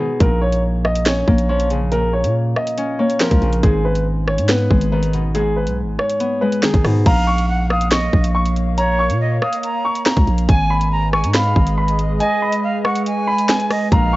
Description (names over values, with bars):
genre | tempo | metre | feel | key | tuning
hip hop, drill | 140 BPM | 4/4 | half-time | Bb phrygian | A4 = 441 Hz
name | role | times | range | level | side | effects
dark concert grand piano | melody | 0.0-14.2 s | Ab4 to Eb6 | -21 LUFS | equal | low-pass filter
Celtic harp | accompaniment | 0.0-9.3, 13.9-14.2 s | Ab2 to Db4 | -23 LUFS | left 2 dB | low-pass filter
growling 808-style bass | bass | 0.2-14.2 s | Ab1 to Bb2 | -18 LUFS | equal | none
drill drum kit | drums | 0.2-14.0 s | crash cymbal, hi-hat, kick drum, rim click, snare drum | -17 LUFS | equal | none
jazz flute | second line | 7.1-14.2 s | Db5 to Bb5 | -23 LUFS | right 2 dB | ping-pong delay
warbly tape-like pad | sustained chords | 7.8-14.2 s | Ab3 to F5 | -25 LUFS | right 2 dB | chorus, built-in reverb
room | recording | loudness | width
small room ambience | worn, warbling old tape, cassette tape, warbly pitch drift, nothing above 7.8 kHz | -15 LUFS | side -19 dB against mid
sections
0.0-7.1 A section; 7.1-14.2 B section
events
break 0.0; kick muted 12.2-13.9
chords
0.2 Bbm; 3.6 Abm; 7.1 Bbm; 10.5 Abm